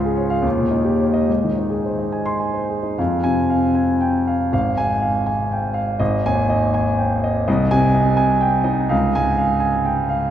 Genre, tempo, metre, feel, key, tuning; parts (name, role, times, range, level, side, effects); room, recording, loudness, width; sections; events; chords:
classical, romantic character piece for solo piano; 68-88 BPM (dotted quarters); 6/8; rubato; F minor; A4 = 439 Hz
warm concert grand piano; solo; 0.0-10.3 s; Ab1 to C6; -16 LUFS; equal
wet cathedral reverb, RT60 4.8 s; recorded in a church or concert hall; -16 LUFS; side -10 dB against mid
0.0-3.0 A section; 3.0-10.3 B section
0.4 Eb7; 1.3 Ab; 3.0 Fm; 4.5 Fm/Ab; 6.0 Ab5; 7.5 Ab/C; 8.9 Db